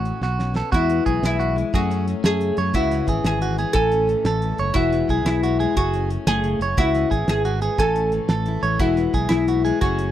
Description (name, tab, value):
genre	highlife guitar band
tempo	119 BPM (dotted quarters)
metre	12/8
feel	straight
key	E major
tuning	A4 = 440 Hz
part	oud	melody	0.0-10.1 s	E4 to A4	-22 LUFS	left 2 dB	none
part	picked plugged-in steel-string acoustic guitar	accompaniment	0.0-10.1 s	E2 to E4	-30 LUFS	left 6 dB	none
part	clean electric guitar	arpeggios	0.0-10.1 s	A3 to G#5	-26 LUFS	right 5 dB	none
part	fingered electric bass	bass	0.0-10.1 s	E1 to F#2	-24 LUFS	equal	none
part	cloth-damped thuddy drum kit	drums	0.1-10.1 s	hi-hat, kick drum, snare drum	-23 LUFS	right 1 dB	none
room	small room ambience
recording	dry, close 1970s-style studio recording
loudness	-18 LUFS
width	side -12 dB against mid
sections	0.7-10.1 A section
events	drum fill 0.2-0.7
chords	0.2 Bsus2; 0.7 Eadd9; 1.7 F#madd9; 2.7 C#m7; 3.8 A; 4.8 Eadd9; 5.8 F#madd9; 6.8 C#m7; 7.8 A; 8.8 Eadd9